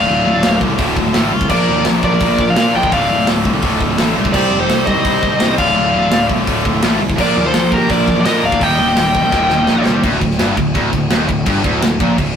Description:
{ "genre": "heavy metal", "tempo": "169 BPM", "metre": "4/4", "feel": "straight", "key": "D phrygian", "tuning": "A4 = 438 Hz", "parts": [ { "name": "dark smooth lead guitar", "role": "melody", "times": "0.0-9.9 s", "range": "Bb4 to G5", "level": "-18 LUFS", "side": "left 1 dB", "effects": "overdrive, ping-pong delay" }, { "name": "high-gain lead guitar", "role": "second line", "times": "0.0-9.9 s", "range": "G4 to Eb5", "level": "-23 LUFS", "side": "left 1 dB", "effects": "distortion" }, { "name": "heavy high-gain guitar", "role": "riff", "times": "0.0-12.3 s", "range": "D2 to C4", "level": "-22 LUFS", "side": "right 4 dB", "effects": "distortion" }, { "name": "high-gain distorted guitar", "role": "riff", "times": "0.0-12.3 s", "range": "D2 to C4", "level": "-22 LUFS", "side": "left 3 dB", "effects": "distortion" }, { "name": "tight distorted guitar", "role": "riff", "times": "0.0-12.3 s", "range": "D2 to C5", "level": "-19 LUFS", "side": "left 1 dB", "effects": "distortion" }, { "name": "fuzz picked electric bass", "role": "bass", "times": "0.0-12.3 s", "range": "D1 to Bb2", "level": "-20 LUFS", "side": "equal", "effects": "overdrive" }, { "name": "tight metal drum kit", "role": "drums", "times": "0.4-12.3 s", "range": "crash cymbal, hi-hat, kick drum, snare drum", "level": "-19 LUFS", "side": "equal", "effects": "none" } ], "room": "wet small room reverb, RT60 0.6 s", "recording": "rough rehearsal-room recording, warm saturation", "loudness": "-12 LUFS", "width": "side -8 dB against mid", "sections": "0.0-10.0 A section; 10.0-12.4 B section", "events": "drum fill 9.3-10.0", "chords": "0.0 Dm; 1.5 Bb; 2.9 Dm; 4.3 Cm; 5.6 Dm; 7.2 Bb; 8.6 Eb; 10.0 N.C.", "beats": "| 0.08 0.43 0.79 1.14 | 1.50 1.85 2.21 2.56 | 2.92 3.27 3.63 3.98 | 4.34 4.69 5.05 5.40 | 5.76 6.12 6.47 6.83 | 7.18 7.54 7.90 8.25 | 8.61 8.96 9.32 9.68 | 10.03 10.39 10.75 11.11 | 11.46 11.82 12.18" }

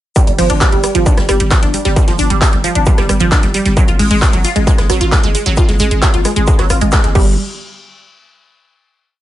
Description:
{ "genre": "driving peak-time techno", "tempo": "133 BPM", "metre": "4/4", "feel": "straight", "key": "unclear", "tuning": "A4 = 440 Hz", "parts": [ { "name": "resonant blip pluck", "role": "riff", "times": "0.2-7.4 s", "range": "F3 to F4", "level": "-16 LUFS", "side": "right 2 dB", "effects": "phaser, tube saturation, sidechain pumping, tape echo" }, { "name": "electronic kick drum", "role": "drums", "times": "0.2-7.2 s", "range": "none", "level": "-12 LUFS", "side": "equal", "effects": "distortion, overdrive, studio reverb" }, { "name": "open jazz drum kit", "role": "drums", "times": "0.2-7.1 s", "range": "hi-hat, shaker, snare drum", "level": "-27 LUFS", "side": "left 3 dB", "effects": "high-pass filter on hats, studio reverb, high-pass filter on snare, high-pass filter on perc, high-pass filter on room" }, { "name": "techno drum kit", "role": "drums", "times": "0.2-7.2 s", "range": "crash cymbal, handclaps, hi-hat, rim click", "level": "-19 LUFS", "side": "equal", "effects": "overdrive, sidechain pumping on hats, studio reverb, sidechain pumping on cymbals" }, { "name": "growling 808-style bass", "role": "bass", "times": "0.3-7.4 s", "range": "G1 to Ab1", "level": "-17 LUFS", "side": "equal", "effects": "overdrive, sidechain pumping, low-pass filter" } ], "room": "light reverb, small room ambience", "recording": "nothing above 11.0 kHz", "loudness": "-10 LUFS", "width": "side -13 dB against mid", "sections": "0.2-7.4 drop; 7.4-9.2 final hit", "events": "drop 0.2-7.4; band accent 6.9", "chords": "0.2 G5; 3.8 Fm/Ab; 7.2 N.C.", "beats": "| 0.16 0.61 1.06 1.51 | 1.96 2.42 2.87 3.32 | 3.77 4.22 4.67 5.12 | 5.57 6.02 6.48 6.93" }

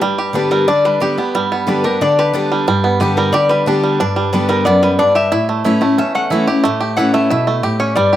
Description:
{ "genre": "bluegrass", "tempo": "181 BPM", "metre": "4/4", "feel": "straight", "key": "G lydian", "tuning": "A4 = 440 Hz", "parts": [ { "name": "picked steel-string acoustic guitar", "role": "accompaniment", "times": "0.0-8.2 s", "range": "E2 to G4", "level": "-17 LUFS", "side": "left 1 dB", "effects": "none" }, { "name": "bluegrass banjo", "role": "arpeggios", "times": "0.0-8.2 s", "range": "G3 to G4", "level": "-17 LUFS", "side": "right 4 dB", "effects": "slapback echo" }, { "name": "lap resonator guitar", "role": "melody", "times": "0.4-8.2 s", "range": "Bb4 to F#5", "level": "-16 LUFS", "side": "left 3 dB", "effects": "slapback echo" } ], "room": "little or no reverb", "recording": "recorded outdoors, with no room sound", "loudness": "-12 LUFS", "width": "side -12 dB against mid", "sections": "0.0-8.2 A section", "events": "resonator guitar played with a steel bar solo 0.0-8.2", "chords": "0.0 G; 5.3 A", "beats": "| 0.03 0.36 0.69 1.02 | 1.35 1.68 2.01 2.34 | 2.67 3.01 3.34 3.67 | 4.00 4.33 4.66 4.99 | 5.32 5.65 5.98 6.31 | 6.64 6.97 7.30 7.63 | 7.96" }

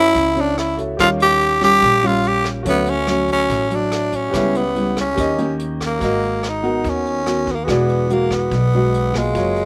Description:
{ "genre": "bossa nova", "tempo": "144 BPM", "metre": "4/4", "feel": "straight", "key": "G# minor from 6.0 s", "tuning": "A4 = 440 Hz", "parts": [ { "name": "growling tenor saxophone", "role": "melody", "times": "0.0-9.7 s", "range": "G#3 to G4", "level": "-20 LUFS", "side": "equal", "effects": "none" }, { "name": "nylon-string guitar", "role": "accompaniment", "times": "0.0-9.7 s", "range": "A2 to A#4", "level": "-24 LUFS", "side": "equal", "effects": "slapback echo" }, { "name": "warm concert grand piano", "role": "accompaniment", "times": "0.0-9.7 s", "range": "E#4 to E#5", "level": "-30 LUFS", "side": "equal", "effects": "none" }, { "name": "upright bass", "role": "bass", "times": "0.0-9.7 s", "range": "E1 to F#2", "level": "-27 LUFS", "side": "equal", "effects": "none" }, { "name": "vintage brush drum kit", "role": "drums", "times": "0.2-9.7 s", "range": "hi-hat, kick drum, rim click", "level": "-32 LUFS", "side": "equal", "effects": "none" } ], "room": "little or no reverb", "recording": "recorded outdoors, with no room sound", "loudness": "-18 LUFS", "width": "mono", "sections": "0.0-6.0 A section; 6.0-9.7 B section", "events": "none", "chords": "0.0 F#m7; 1.0 D#9; 2.7 Dmaj7; 4.3 C#m7b5; 5.2 D#7; 6.0 G#m9; 7.7 E9", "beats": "0.15 0.57 | 0.99 1.41 1.82 2.24 | 2.66 3.08 3.50 3.92 | 4.33 4.75 5.17 5.59 | 6.01 6.42 6.84 7.26 | 7.68 8.10 8.52 8.94 | 9.35" }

